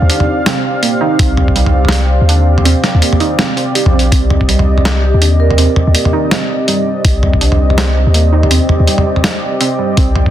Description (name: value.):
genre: half-time drum and bass.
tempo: 164 BPM.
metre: 4/4.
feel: swing 58% on 16ths, half-time.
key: C minor.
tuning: A4 = 442 Hz.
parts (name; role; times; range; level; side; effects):
dark analog pad; sustained chords; 0.0-10.3 s; C4 to G5; -17 LUFS; equal; chorus, sidechain pumping.
long sustained 808-style bass; bass; 0.0-10.3 s; Bb1 to Eb2; -11 LUFS; equal; none.
warbly dusty pluck; arpeggios; 0.1-10.1 s; G3 to G4; -18 LUFS; right 5 dB; chorus, digital delay.
boom bap sampler-style drum kit; drums; 0.1-10.2 s; hi-hat, snare drum, toms; -15 LUFS; equal; soft clipping on snare.
electronic kick drum; drums; 1.2-1.5, 4.1-4.5, 7.0-7.4, 10.0-10.3 s; none; -14 LUFS; equal; none.
vibraphone with soft mallets; melody; 5.0-5.7 s; G4 to Bb4; -22 LUFS; right 3 dB; digital delay.
room: light reverb, digital ambience.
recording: dense, heavily limited modern master.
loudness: -9 LUFS.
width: side -11 dB against mid.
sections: 0.0-10.3 A section.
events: none.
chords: 0.0 Cm.